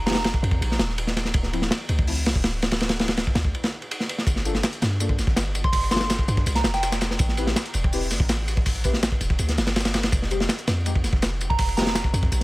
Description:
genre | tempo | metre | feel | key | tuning
drum and bass, jungle | 164 BPM | 4/4 | straight | G dorian | A4 = 439 Hz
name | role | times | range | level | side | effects
warm 808-style bass | bass | 0.0-12.4 s | D1 to G2 | -26 LUFS | equal | none
soft synth bell | melody | 0.1-0.4, 5.6-7.2, 11.5-12.1 s | G5 to C6 | -30 LUFS | right 2 dB | chorus, vintage 12-bit sampler grit, dub echo
deep mellow chord stab | stabs | 0.1-11.9 s | F3 to B4 | -33 LUFS | left 4 dB | chorus, dub echo
crunchy breakbeat drum kit | drums | 0.1-12.4 s | hi-hat, kick drum, ride cymbal, snare drum | -23 LUFS | equal | none
breakbeat sampler-style drum kit | drums | 4.3-12.4 s | hi-hat, snare drum, tambourine | -33 LUFS | left 2 dB | high-pass filter on perc, high-pass filter on snare, high-pass filter on hats, high-pass filter on room
room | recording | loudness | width
small room ambience | none | -21 LUFS | side -19 dB against mid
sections
0.0-12.4 A section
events
break 3.5-4.3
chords
0.0 F7(no3); 1.3 Dm9; 4.3 Gm9; 7.2 Am9; 10.1 Fm9

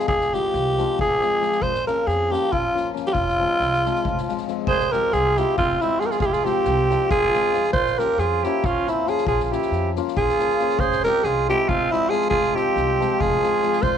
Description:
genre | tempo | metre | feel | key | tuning
balkan folk, Balkan wedding band | 275 BPM (eighths) | 7/8 | straight | F harmonic minor | A4 = 438 Hz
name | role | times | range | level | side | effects
growling alto saxophone | melody | 0.0-14.0 s | E4 to C5 | -21 LUFS | right 1 dB | none
hammered dulcimer | accompaniment | 0.0-13.9 s | F3 to F4 | -27 LUFS | left 13 dB | none
upright bass | bass | 0.1-14.0 s | F1 to F2 | -28 LUFS | right 1 dB | none
soft-mallet drum kit | percussion | 0.1-14.0 s | kick drum, snare drum | -31 LUFS | left 1 dB | none
mellow trumpet | second line | 4.7-14.0 s | C4 to Ab4 | -26 LUFS | right 15 dB | none
room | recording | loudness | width
small room reverb | 1960s-style stereo with parts hard left and right | -18 LUFS | side -8 dB against mid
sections
0.0-4.7 A section; 4.7-14.0 A section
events
none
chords
0.0 Fm; 1.6 Bbm; 3.1 Fm; 7.7 Bbm; 10.8 Fm

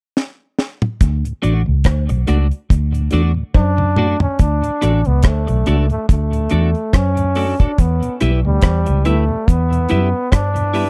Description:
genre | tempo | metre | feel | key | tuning
roots reggae | 71 BPM | 4/4 | swing 56% on 16ths | D major | A4 = 440 Hz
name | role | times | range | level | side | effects
deep reggae drum kit | drums | 0.2-10.9 s | hi-hat, kick drum, rim click, snare drum, toms | -17 LUFS | equal | none
vintage muted fingered electric bass | bass | 1.0-10.9 s | A1 to G2 | -18 LUFS | equal | none
mellow tonewheel organ | accompaniment | 1.2-10.8 s | D2 to F#4 | -26 LUFS | equal | slow rotary speaker
clean electric guitar | accompaniment | 1.4-10.9 s | A3 to E5 | -26 LUFS | equal | analog chorus
cowbell | percussion | 1.9-10.5 s | none | -32 LUFS | equal | none
clear trombone | melody | 3.6-10.9 s | G3 to D4 | -23 LUFS | equal | tape echo
room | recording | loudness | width
little or no reverb | dry, close 1970s-style studio recording | -16 LUFS | mono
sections
0.0-1.0 A section; 1.0-4.4 B section; 4.4-10.9 C section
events
drum fill 0.2-1.0, 3.6-4.4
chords
0.0 N.C.; 1.0 D; 7.8 Em

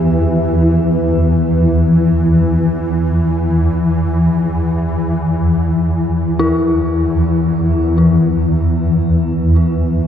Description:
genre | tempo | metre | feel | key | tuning
dark ambient drone | free time | none | none | E minor | A4 = 440 Hz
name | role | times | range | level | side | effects
deep dark ambient pad | sustained chords | 0.0-5.3 s | B3 to E5 | -30 LUFS | right 1 dB | chorus, built-in reverb, shimmer reverb
swarming drone | drone | 0.0-10.1 s | E2 to E3 | -12 LUFS | equal | built-in reverb
dark detuned synth bell | arpeggios | 6.4-10.1 s | E4 | -20 LUFS | left 2 dB | chorus, ping-pong delay, shimmer reverb
room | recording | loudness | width
wet cathedral reverb, RT60 6.3 s | dark, warm production | -12 LUFS | side -9 dB against mid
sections
0.0-5.3 A section; 5.3-10.1 B section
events
fade-out on ambient pad 0.0-5.3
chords
0.0 Em; 5.3 N.C.

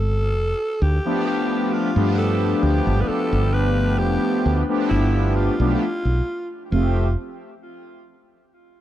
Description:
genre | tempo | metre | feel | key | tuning
vaporwave | 66 BPM | 4/4 | straight | unclear | A4 = 440 Hz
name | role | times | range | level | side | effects
raspy alto saxophone | melody | 0.0-7.1 s | E4 to B4 | -27 LUFS | equal | tape echo
woody fretless electric bass | bass | 0.0-7.1 s | F1 to G2 | -20 LUFS | equal | none
mellow synth brass | accompaniment | 1.0-7.1 s | F3 to E5 | -22 LUFS | left 1 dB | wide subtle chorus
room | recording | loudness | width
light reverb, studio reverb | dark, warm production | -18 LUFS | side -12 dB against mid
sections
0.0-6.7 A section; 6.7-8.8 B section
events
none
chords
0.0 G7; 6.7 Fmaj7

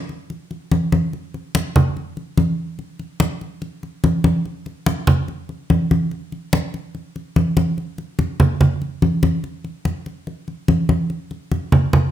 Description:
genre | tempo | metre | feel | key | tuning
jazz | 144 BPM | 4/4 | straight | none | none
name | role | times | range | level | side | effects
congas | percussion | 0.1-12.1 s | none | -17 LUFS | equal | none
room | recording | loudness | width
moderate large studio reverb, RT60 0.8 s | none | -18 LUFS | side -12 dB against mid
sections
0.0-7.8 A section; 7.8-12.1 B section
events
none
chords
none

